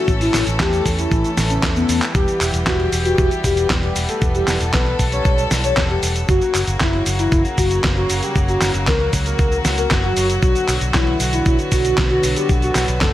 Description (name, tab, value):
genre	italo disco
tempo	116 BPM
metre	4/4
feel	straight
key	B minor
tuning	A4 = 442 Hz
part	soft octave-layered synth lead	melody	0.0-13.1 s	B3 to C#5	-21 LUFS	left 1 dB	chorus, phaser, digital delay
part	dark studio string section	sustained chords	0.0-13.1 s	C#3 to A4	-24 LUFS	left 1 dB	none
part	fingered electric bass with an envelope filter	bass	0.1-13.1 s	E1 to E2	-22 LUFS	equal	none
part	dusty soul sampler-style drum kit	drums	0.1-13.1 s	cabasa, handclaps, hi-hat, snare drum	-22 LUFS	equal	studio reverb
part	electronic kick drum	drums	0.1-13.1 s	none	-20 LUFS	equal	studio reverb
room	light reverb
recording	vinyl crackle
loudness	-15 LUFS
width	side -14 dB against mid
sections	0.0-13.1 A section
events	drum fill 1.6-2.1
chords	0.0 A; 2.1 Em; 6.3 F#; 10.4 Bm